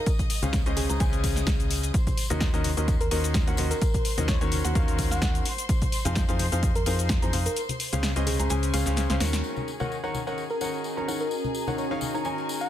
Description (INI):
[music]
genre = piano house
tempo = 128 BPM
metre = 4/4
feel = swing 54% on 16ths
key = Eb dorian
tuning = A4 = 437 Hz
[part]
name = soft struck synth lead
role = melody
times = 0.0-12.7 s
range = Ab4 to Gb5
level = -34 LUFS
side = left 1 dB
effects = chorus, tape echo
[part]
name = rich chamber string section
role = sustained chords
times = 0.0-12.7 s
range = Ab4 to Eb6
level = -38 LUFS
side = equal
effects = sidechain pumping, low-pass filter
[part]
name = electronic kick drum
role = drums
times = 0.1-7.2 s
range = none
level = -26 LUFS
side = equal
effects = none
[part]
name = house drum kit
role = drums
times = 0.1-9.4 s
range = hi-hat, shaker, snare drum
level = -31 LUFS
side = left 1 dB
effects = low-pass filter on hats, low-pass filter on perc, low-pass filter on snare
[part]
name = tambourine and congas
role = percussion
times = 0.1-12.7 s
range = none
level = -37 LUFS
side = left 4 dB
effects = none
[part]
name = clear concert grand piano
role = riff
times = 0.4-12.7 s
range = Db3 to Bb5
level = -30 LUFS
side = left 2 dB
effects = sidechain pumping, low-pass filter, tape echo
[part]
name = organ-like FM bass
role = bass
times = 0.4-9.4 s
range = Db2 to F2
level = -27 LUFS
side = equal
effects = sidechain pumping
[part]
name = warbly tape-like pad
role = texture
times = 10.2-12.7 s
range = Db4 to Bb5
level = -34 LUFS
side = right 3 dB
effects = chorus, built-in reverb, sidechain pumping
[sound]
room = little or no reverb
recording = dense, heavily limited modern master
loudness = -23 LUFS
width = side -11 dB against mid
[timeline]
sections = 0.0-9.4 A section; 9.4-12.7 B section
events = kick drops out 7.6-9.4; drum fill 9.0-9.4; band accent 9.3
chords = 0.1 Dbmaj7(no3); 1.9 Ebm7; 5.5 Fm7; 7.6 Dbmaj7; 9.4 Ebm7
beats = | 0.07 0.54 1.00 1.47 | 1.94 2.41 2.88 3.35 | 3.82 4.29 4.75 5.22 | 5.69 6.16 6.63 7.10 | 7.57 8.04 8.50 8.97 | 9.44 9.91 10.38 10.85 | 11.32 11.79 12.25